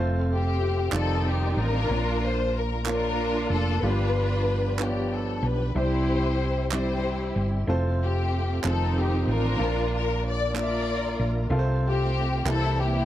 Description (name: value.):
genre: slow gospel.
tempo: 62 BPM (dotted quarters).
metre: 6/8.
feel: straight.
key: F major.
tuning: A4 = 439 Hz.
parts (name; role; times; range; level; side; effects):
warm grand piano; accompaniment; 0.0-13.1 s; G2 to E5; -31 LUFS; equal; none.
tonewheel organ; sustained chords; 0.0-13.1 s; Eb3 to D5; -35 LUFS; right 4 dB; slow rotary speaker, overdrive, chorus vibrato.
hollow-body short-scale fingered electric bass; bass; 0.0-13.1 s; F1 to C2; -26 LUFS; equal; none.
dark studio string section; melody; 0.3-13.1 s; Bb3 to D5; -28 LUFS; left 2 dB; none.
group handclap; percussion; 0.9-12.8 s; none; -31 LUFS; right 8 dB; none.
room: little or no reverb.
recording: dark, warm production.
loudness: -23 LUFS.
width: side -12 dB against mid.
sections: 0.0-13.1 A section.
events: none.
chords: 0.0 F; 0.9 F13; 1.9 Bb; 3.8 G7; 5.7 C; 7.7 F; 8.6 F7; 9.6 Bb; 11.5 F/C; 12.5 C7.